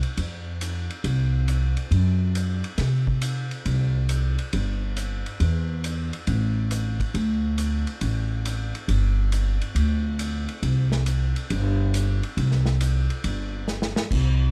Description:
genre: country, western swing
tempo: 138 BPM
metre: 4/4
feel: swing 67% on 8ths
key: C major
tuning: A4 = 437 Hz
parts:
  - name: vintage drum kit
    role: drums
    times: 0.0-14.2 s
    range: crash cymbal, hi-hat, kick drum, ride cymbal, snare drum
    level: -35 LUFS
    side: equal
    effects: none
  - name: upright bass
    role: bass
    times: 0.2-14.5 s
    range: G1 to C3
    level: -25 LUFS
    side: equal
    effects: none
room: little or no reverb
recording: none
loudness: -25 LUFS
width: mono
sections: 0.0-14.1 A section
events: drum fill 13.7-14.1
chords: none

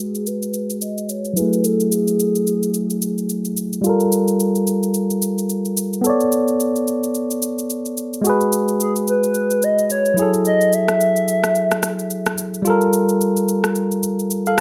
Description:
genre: amapiano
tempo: 109 BPM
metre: 4/4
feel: swing 58% on 16ths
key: unclear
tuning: A4 = 440 Hz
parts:
  - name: hollow clarinet-like synth lead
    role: melody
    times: 0.0-3.5, 8.8-12.4 s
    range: G#4 to E5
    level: -22 LUFS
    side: equal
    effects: chorus, low-pass filter, digital delay
  - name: tine electric piano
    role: accompaniment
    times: 0.0-14.6 s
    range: F#3 to F5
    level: -21 LUFS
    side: equal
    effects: low-pass filter
  - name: electronic shaker and rim click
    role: drums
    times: 0.1-14.6 s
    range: none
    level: -26 LUFS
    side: equal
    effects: none
room: light reverb, digital ambience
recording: none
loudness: -19 LUFS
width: mono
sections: 0.0-14.6 A section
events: filter sweep 0.0-14.6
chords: 0.0 G#m7; 1.4 F#m9; 3.8 Gm9; 6.0 Bm9; 8.2 G#m7; 10.2 F#m9; 12.7 Gm9

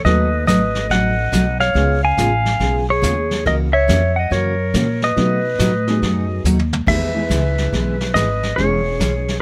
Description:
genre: country, western swing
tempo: 141 BPM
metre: 4/4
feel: swing 64% on 8ths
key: E major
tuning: A4 = 440 Hz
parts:
  - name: clean lap steel guitar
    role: melody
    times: 0.0-9.4 s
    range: C#5 to G#5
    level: -23 LUFS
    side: equal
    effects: none
  - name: breathy clarinet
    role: second line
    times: 0.0-9.4 s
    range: G#4 to E#5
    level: -26 LUFS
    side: equal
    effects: none
  - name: honky-tonk upright piano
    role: accompaniment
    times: 0.0-2.0, 5.2-9.4 s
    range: D#3 to A4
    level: -28 LUFS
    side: equal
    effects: none
  - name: picked steel-string acoustic guitar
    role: accompaniment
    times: 0.0-9.1 s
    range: B2 to C#5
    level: -24 LUFS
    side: equal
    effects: none
  - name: upright bass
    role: bass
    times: 0.0-9.4 s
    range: E1 to B2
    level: -22 LUFS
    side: equal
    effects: none
  - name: vintage brush drum kit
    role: drums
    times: 0.1-9.4 s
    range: brushed snare drum, crash cymbal, hi-hat, kick drum, snare drum, toms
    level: -28 LUFS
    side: equal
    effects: none
room: little or no reverb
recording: none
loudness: -17 LUFS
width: mono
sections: 0.0-6.9 A section; 6.9-9.4 B section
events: drum fill 6.4-6.9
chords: 0.0 B7; 1.8 C#7; 3.5 F#7/C#; 5.2 B7; 6.9 E; 8.6 C#m/E

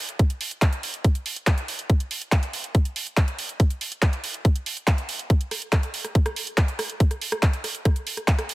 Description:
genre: trance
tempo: 141 BPM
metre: 4/4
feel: straight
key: none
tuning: none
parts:
  - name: drum and bass drum kit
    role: drums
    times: 0.1-8.5 s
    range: handclaps, hi-hat, rim click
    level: -28 LUFS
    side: right 1 dB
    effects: overdrive
  - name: electronic kick drum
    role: drums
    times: 0.2-8.4 s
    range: none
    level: -19 LUFS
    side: equal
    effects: overdrive
room: digital ambience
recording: heavily compressed radio sound, multiband compression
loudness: -22 LUFS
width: side -19 dB against mid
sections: 0.0-8.5 A section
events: none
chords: none

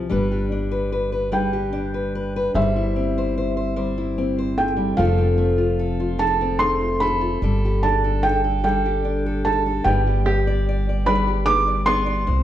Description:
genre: acoustic folk duo or small band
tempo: 49 BPM (dotted quarters)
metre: 6/8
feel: straight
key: unclear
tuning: A4 = 442 Hz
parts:
  - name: fingerpicked steel-string acoustic guitar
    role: accompaniment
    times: 0.0-12.4 s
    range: C3 to D5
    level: -23 LUFS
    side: left 2 dB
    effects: none
  - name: upright bass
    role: bass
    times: 0.0-12.4 s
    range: F1 to C2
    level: -24 LUFS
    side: equal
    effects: none
  - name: felt-muted upright piano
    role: melody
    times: 1.3-12.4 s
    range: E5 to D6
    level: -23 LUFS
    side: right 2 dB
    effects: slapback echo
  - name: open-back banjo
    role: arpeggios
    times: 10.3-12.3 s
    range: B3 to B4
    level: -28 LUFS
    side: right 3 dB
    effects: none
room: moderate large studio reverb, RT60 1.4 s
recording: dark, warm production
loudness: -18 LUFS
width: side -12 dB against mid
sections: 0.1-12.4 A section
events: none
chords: 0.1 G; 2.5 C/G; 5.0 F; 7.4 Gsus2; 9.9 G

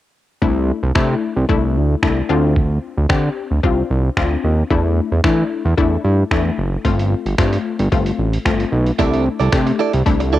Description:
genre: dance-pop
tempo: 112 BPM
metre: 4/4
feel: straight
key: C major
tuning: A4 = 440 Hz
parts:
  - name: wide unison pluck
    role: accompaniment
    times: 0.4-10.4 s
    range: A3 to G4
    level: -21 LUFS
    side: left 7 dB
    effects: sidechain pumping, cassette tape
  - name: fat analog bass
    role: bass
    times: 0.4-10.4 s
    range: F#1 to E3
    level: -17 LUFS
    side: right 1 dB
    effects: sidechain pumping
  - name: lo-fi sampler-style drum kit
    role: drums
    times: 0.4-10.3 s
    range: finger snaps, hi-hat, kick drum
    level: -20 LUFS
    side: right 1 dB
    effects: none
  - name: direct-recorded clean electric guitar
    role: riff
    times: 9.0-10.4 s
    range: E4 to D5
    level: -20 LUFS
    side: right 8 dB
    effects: wide subtle chorus, cassette tape
room: digital ambience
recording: home recording on cassette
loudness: -15 LUFS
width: side -14 dB against mid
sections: 0.4-10.4 A section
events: none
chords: 0.4 C69; 2.3 Dm7; 4.7 Em11; 6.8 G9sus4; 9.0 C69

